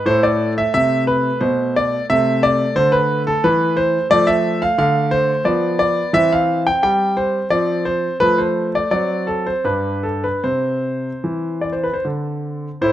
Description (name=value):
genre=classical, baroque-style suite movement for grand piano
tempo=74-91 BPM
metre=3/4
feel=rubato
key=A minor, C major from 4.1 s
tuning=A4 = 440 Hz
part: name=bright concert grand piano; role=solo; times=0.0-12.9 s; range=G2 to G5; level=-16 LUFS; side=equal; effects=none
room=light reverb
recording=close, detailed microphones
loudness=-15 LUFS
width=side -12 dB against mid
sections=0.0-12.8 A section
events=none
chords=0.1 Am; 2.1 Am/C; 4.1 Dm/F; 5.4 Bdim/F; 6.1 C/E; 7.5 F5; 8.2 F6; 8.9 D7/F#; 9.6 G; 10.4 C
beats=| 0.06 0.73 1.41 | 2.09 2.76 3.43 | 4.10 4.77 5.44 | 6.13 6.82 7.50 | 8.21 8.91 9.64 | 10.43 11.24 12.04 | 12.82